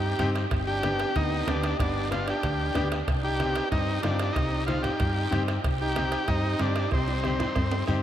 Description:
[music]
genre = latin, cumbia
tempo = 187 BPM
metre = 4/4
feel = straight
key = C harmonic minor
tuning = A4 = 440 Hz
[part]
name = combo organ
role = melody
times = 0.0-7.8 s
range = C4 to G4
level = -29 LUFS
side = left 1 dB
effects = none
[part]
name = clear trombone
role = second line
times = 0.0-7.8 s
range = G3 to Eb4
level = -36 LUFS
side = right 3 dB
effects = none
[part]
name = hollow-body short-scale fingered electric bass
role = bass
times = 0.0-8.0 s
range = G1 to G2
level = -30 LUFS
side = equal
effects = none
[part]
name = bright upright piano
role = accompaniment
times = 0.2-8.0 s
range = B3 to G4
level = -33 LUFS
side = left 2 dB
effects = none
[part]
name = bombo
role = percussion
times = 0.2-8.0 s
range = none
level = -32 LUFS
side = right 1 dB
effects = none
[part]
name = congas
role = percussion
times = 0.2-8.0 s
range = none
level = -38 LUFS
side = left 1 dB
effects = none
[part]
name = guiro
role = percussion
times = 0.2-8.0 s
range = none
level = -43 LUFS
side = right 4 dB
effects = none
[part]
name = timbales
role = percussion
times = 0.2-7.8 s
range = none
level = -40 LUFS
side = right 6 dB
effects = none
[sound]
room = wet huge ambient reverb, RT60 7.8 s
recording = in a vast, echoing space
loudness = -24 LUFS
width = side -11 dB against mid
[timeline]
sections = 0.0-8.0 A section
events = drum fill 6.9-8.0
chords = 0.0 Cm; 0.5 G; 3.1 Cm

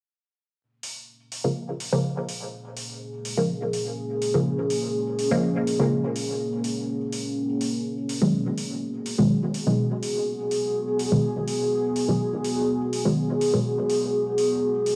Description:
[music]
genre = dub techno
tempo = 124 BPM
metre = 4/4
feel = straight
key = Bb phrygian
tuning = A4 = 440 Hz
[part]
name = deep dark ambient pad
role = sustained chords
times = 2.8-15.0 s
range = Bb3 to Ab4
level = -28 LUFS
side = equal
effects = chorus, built-in reverb, cassette tape
[part]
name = electronic hi-hat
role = drums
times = 0.8-15.0 s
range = none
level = -38 LUFS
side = equal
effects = overdrive, cassette tape
[part]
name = filtered dub chord stab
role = stabs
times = 1.4-13.8 s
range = Cb3 to Bb3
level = -27 LUFS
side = equal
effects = phaser, cassette tape, dub echo
[sound]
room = moderate spring reverb, RT60 1.2 s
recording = home recording on cassette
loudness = -25 LUFS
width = mono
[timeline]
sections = 0.6-15.0 A section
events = filter sweep on synth stab 0.6-15.0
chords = 0.6 Bbm7

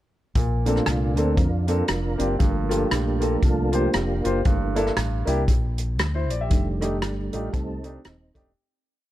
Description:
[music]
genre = uptempo gospel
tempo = 117 BPM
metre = 4/4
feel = swing 60% on 8ths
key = Bb major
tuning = A4 = 442 Hz
[part]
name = clear concert grand piano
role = accompaniment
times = 0.4-8.5 s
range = G2 to E5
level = -26 LUFS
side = left 1 dB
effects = none
[part]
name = fingered electric bass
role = bass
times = 0.4-8.5 s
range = Eb1 to F2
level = -26 LUFS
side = equal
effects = none
[part]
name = warm soul drum kit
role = drums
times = 0.4-8.5 s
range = hi-hat, kick drum, rim click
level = -24 LUFS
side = equal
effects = none
[part]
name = tonewheel organ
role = sustained chords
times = 0.7-8.5 s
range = D3 to Bb4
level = -27 LUFS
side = right 2 dB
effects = fast rotary speaker, overdrive, chorus vibrato
[sound]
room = little or no reverb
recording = dark, warm production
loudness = -21 LUFS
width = side -14 dB against mid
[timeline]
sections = 0.4-8.6 breakdown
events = tonewheel organ solo 0.4-8.6; fade-out 6.5-8.6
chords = 0.4 Bbmaj9; 4.5 C13/G; 6.5 F13

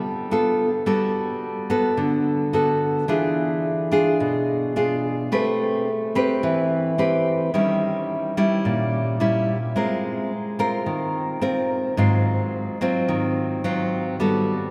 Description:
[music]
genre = bossa nova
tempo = 108 BPM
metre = 4/4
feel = straight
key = unclear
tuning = A4 = 440 Hz
[part]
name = nylon-string guitar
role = solo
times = 0.0-14.7 s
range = Ab2 to B4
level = -22 LUFS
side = equal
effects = none
[sound]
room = wet cathedral reverb, RT60 5.1 s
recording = in a vast, echoing space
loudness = -22 LUFS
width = mono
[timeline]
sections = 0.9-14.7 A section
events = none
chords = 0.0 G9; 0.9 Gmaj9; 3.1 E7b9; 5.3 Am9; 7.5 Eb7b9; 9.8 Ab69; 12.0 Ab6; 14.2 Gmaj9

